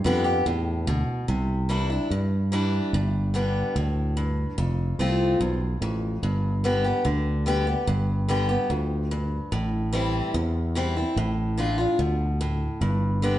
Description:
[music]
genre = honky-tonk and classic country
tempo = 146 BPM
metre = 4/4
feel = straight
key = unclear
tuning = A4 = 439 Hz
[part]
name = picked steel-string acoustic guitar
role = accompaniment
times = 0.0-13.4 s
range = E2 to G4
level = -26 LUFS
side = left 1 dB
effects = none
[part]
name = sustaining fretless electric bass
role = bass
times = 0.0-13.4 s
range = F1 to G2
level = -25 LUFS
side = equal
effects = none
[sound]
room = wet stone room reverb, RT60 1.3 s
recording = band playing live in one room, nothing above 10.4 kHz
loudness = -23 LUFS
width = side -13 dB against mid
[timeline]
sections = 0.0-1.3 A section; 1.3-13.4 B section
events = none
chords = 0.0 G; 1.3 Cadd9; 2.9 G; 4.6 F; 6.2 G; 9.5 Am7; 11.2 Dm/A; 12.8 G

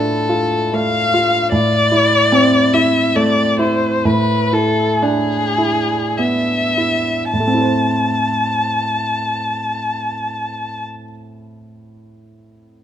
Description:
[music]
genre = classical, slow romantic movement for piano trio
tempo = 49-78 BPM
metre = 3/4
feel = rubato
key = A minor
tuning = A4 = 440 Hz
[part]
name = warm violin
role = melody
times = 0.0-10.8 s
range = G#4 to A5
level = -17 LUFS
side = left 2 dB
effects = none
[part]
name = clear grand piano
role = accompaniment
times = 0.0-12.8 s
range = A2 to C5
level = -18 LUFS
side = right 1 dB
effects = none
[sound]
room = light reverb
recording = close, detailed microphones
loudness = -14 LUFS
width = side -10 dB against mid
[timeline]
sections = 0.0-7.3 A section; 7.3-10.4 B section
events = slowing down 0.3-7.3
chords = 0.0 Dm/A; 1.5 Am; 4.0 E7/A; 7.3 Am

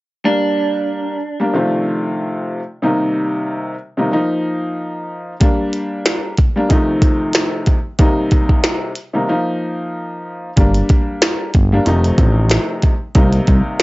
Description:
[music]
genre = hip hop, boom-bap hip-hop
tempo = 93 BPM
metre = 4/4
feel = swing 56% on 16ths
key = G minor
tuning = A4 = 440 Hz
[part]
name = dark upright piano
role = accompaniment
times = 0.2-13.8 s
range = C3 to F4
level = -18 LUFS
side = left 1 dB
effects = high-pass filter, low-pass filter
[part]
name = clean electric guitar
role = melody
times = 0.3-2.3 s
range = D4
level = -20 LUFS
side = right 3 dB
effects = wide subtle chorus, high-pass filter, low-pass filter
[part]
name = glitchy drum kit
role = drums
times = 5.4-13.8 s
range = hi-hat, kick drum, snare drum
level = -14 LUFS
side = equal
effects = vintage 12-bit sampler grit
[part]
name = smooth gliding synth bass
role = bass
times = 10.6-13.6 s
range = F1 to C2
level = -14 LUFS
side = equal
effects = tube saturation
[sound]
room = little or no reverb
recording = dry, gritty hardware recording, transformer saturation, nothing above 7.7 kHz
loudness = -14 LUFS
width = side -20 dB against mid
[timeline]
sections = 0.3-10.6 A section; 10.6-13.8 B section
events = break 9.3-10.6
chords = 0.3 Gm; 1.5 F7; 2.8 Cm7; 4.1 Ebsus2; 5.4 Gm; 6.7 F7; 8.0 Cm7; 9.3 Ebsus2; 10.6 Gm; 11.9 F7; 13.2 Cm7

